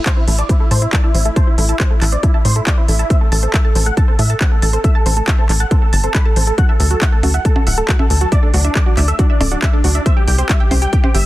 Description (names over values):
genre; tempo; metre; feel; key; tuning
uplifting trance; 138 BPM; 4/4; straight; A dorian; A4 = 440 Hz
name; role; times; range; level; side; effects
big supersaw lead; melody; 0.0-11.2 s; D4 to B5; -21 LUFS; equal; phaser, sidechain pumping, low-pass filter, tape echo
analog pluck; arpeggios; 0.1-11.2 s; F#4 to A5; -26 LUFS; right 4 dB; chorus, sidechain pumping, tape echo
electronic kick drum; drums; 0.1-11.0 s; none; -14 LUFS; equal; none
techno drum kit; drums; 0.1-11.2 s; handclaps, hi-hat, percussion blips; -22 LUFS; equal; none
tight sequencer bass; bass; 0.3-11.3 s; D1 to A2; -15 LUFS; equal; sidechain pumping
room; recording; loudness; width
little or no reverb; dense, heavily limited modern master; -12 LUFS; side -16 dB against mid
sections
0.0-11.3 A section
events
filter sweep on synth arpeggio sound 0.0-11.3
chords
0.0 Am; 6.6 Dadd9; 10.1 C